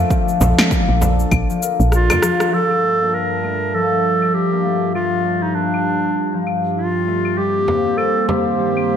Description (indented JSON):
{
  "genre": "organic downtempo",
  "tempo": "99 BPM",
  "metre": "4/4",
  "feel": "swing 59% on 16ths",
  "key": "unclear",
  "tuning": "A4 = 443 Hz",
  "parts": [
    { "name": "warbly tape-like pad", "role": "sustained chords", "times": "0.0-9.0 s", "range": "G2 to A5", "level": "-24 LUFS", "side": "right 1 dB", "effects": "chorus, built-in reverb, sidechain pumping" },
    { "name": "concert harp", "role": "arpeggios", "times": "0.0-9.0 s", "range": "F3 to Bb4", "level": "-21 LUFS", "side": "left 3 dB", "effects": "low-pass filter, ping-pong delay" },
    { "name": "woody FM bass", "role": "bass", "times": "0.0-2.2 s", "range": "Bb1 to F2", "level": "-16 LUFS", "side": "right 1 dB", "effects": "sidechain pumping" },
    { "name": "deep house drum kit", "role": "drums", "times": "0.1-9.0 s", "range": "cabasa, claves, crash cymbal, rim click, snare drum", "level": "-21 LUFS", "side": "left 1 dB", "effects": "overdrive, low-pass filter on perc, studio reverb, low-pass filter on snare, low-pass filter on cymbals, gated reverb" },
    { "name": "electronic kick drum", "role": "drums", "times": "0.1-1.5 s", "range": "none", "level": "-19 LUFS", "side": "right 1 dB", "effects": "overdrive, studio reverb" },
    { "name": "frame drum", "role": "percussion", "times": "0.4-2.2, 7.7-8.4 s", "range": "none", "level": "-26 LUFS", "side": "right 2 dB", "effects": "none" },
    { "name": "warm clarinet", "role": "melody", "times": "1.9-9.0 s", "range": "D4 to Bb4", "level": "-18 LUFS", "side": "right 1 dB", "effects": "digital delay" }
  ],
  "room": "moderate plate reverb, RT60 1.9 s, small room ambience",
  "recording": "bright 1980s-style digital production",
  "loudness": "-15 LUFS",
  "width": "side -8 dB against mid",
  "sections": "0.0-2.5 A section; 2.5-9.0 B section",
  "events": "filter sweep on harp 0.0-2.5, 2.5-9.0; kick drops out 1.9-2.5; drum fill 1.9-2.5; band accent 2.4-2.7",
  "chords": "0.0 Bbmaj7; 2.5 Bbmaj7/G; 7.4 Eb6/G"
}